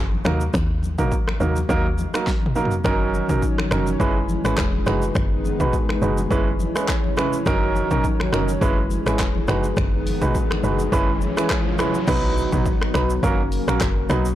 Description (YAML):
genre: afrobeats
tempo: 104 BPM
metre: 4/4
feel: swing 55% on 16ths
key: unclear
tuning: A4 = 443 Hz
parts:
  - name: woody log drum bass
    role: bass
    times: 0.0-14.3 s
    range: E1 to D#2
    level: -24 LUFS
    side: equal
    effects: none
  - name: congas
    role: percussion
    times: 0.1-11.9 s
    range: none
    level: -32 LUFS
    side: left 4 dB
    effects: none
  - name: warm grand piano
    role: accompaniment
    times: 0.2-14.3 s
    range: F#3 to B4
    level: -24 LUFS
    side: right 3 dB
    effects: none
  - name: deep house drum kit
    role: drums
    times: 0.2-14.3 s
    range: crash cymbal, finger snaps, handclaps, hi-hat, kick drum, rim click, shaker, snare drum, toms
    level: -23 LUFS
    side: equal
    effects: soft clipping on snare
  - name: lush unison pad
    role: sustained chords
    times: 2.8-14.3 s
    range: C#3 to C#4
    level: -27 LUFS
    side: left 2 dB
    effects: chorus
  - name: riser and impact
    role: sound effects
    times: 10.0-14.3 s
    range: none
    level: -34 LUFS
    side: left 3 dB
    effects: none
room: light reverb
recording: blown-out, overdriven recording, overdrive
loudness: -18 LUFS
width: side -13 dB against mid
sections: 0.0-2.8 A section; 2.8-12.1 B section; 12.1-14.3 C section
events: drum fill 2.3-2.8; riser 10.0-12.1; impact 12.1-14.3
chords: 0.2 D#m; 2.8 D#m7/F#; 4.0 E6/F#; 4.9 B6/F#; 6.3 E6/F#; 7.5 D#m7/F#; 8.6 E6/F#; 9.5 B6/F#; 10.9 E6/F#; 12.1 B; 13.2 F#